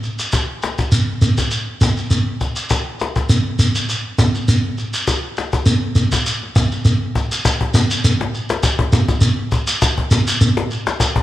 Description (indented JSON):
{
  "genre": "afrobeat",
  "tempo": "101 BPM",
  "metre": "4/4",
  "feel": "swing 53% on 16ths",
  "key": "none",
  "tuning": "none",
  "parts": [
    { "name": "cajon", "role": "drums", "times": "0.0-11.2 s", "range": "none", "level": "-20 LUFS", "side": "left 2 dB", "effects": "none" },
    { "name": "shekere", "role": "percussion", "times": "0.0-11.2 s", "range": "none", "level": "-16 LUFS", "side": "equal", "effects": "none" }
  ],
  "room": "light reverb, small room reverb",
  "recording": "1960s-style stereo",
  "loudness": "-15 LUFS",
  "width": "side -14 dB against mid",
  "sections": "0.0-7.4 A section; 7.4-11.2 B section",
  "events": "none",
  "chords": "none"
}